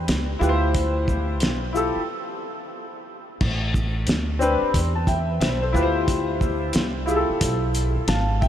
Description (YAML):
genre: hip hop, jazz-hop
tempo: 90 BPM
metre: 4/4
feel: swing 64% on 16ths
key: unclear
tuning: A4 = 440 Hz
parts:
  - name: upright bass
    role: bass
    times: 0.0-8.5 s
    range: G#1 to E2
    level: -24 LUFS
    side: equal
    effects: none
  - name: cloth-damped thuddy drum kit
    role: drums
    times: 0.1-8.5 s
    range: crash cymbal, hi-hat, kick drum, shaker, snare drum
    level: -26 LUFS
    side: equal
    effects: none
  - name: warm upright piano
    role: accompaniment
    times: 0.4-8.5 s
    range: C4 to A5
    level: -24 LUFS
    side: left 1 dB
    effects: analog chorus
room: moderate huge ambient reverb, RT60 8.2 s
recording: dreamy mix soaked in reverb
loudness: -20 LUFS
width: side -10 dB against mid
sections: 0.0-3.4 A section; 3.4-8.5 A section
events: break 2.1-3.4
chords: 0.4 Dm11; 3.4 Am11; 5.7 Dm11